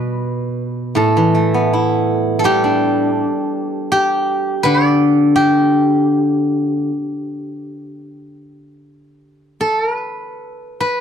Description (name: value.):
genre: chinese traditional, Chinese solo plucked strings.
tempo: 80 BPM.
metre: 4/4.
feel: rubato.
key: G gong mode.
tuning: A4 = 436 Hz.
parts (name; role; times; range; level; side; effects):
steel-string zither; solo; 0.0-11.0 s; A2 to D5; -15 LUFS; equal; none.
room: light reverb.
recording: dry, close 1970s-style studio recording.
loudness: -14 LUFS.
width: side -8 dB against mid.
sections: 0.0-10.0 A section; 10.0-11.0 B section.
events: none.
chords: none.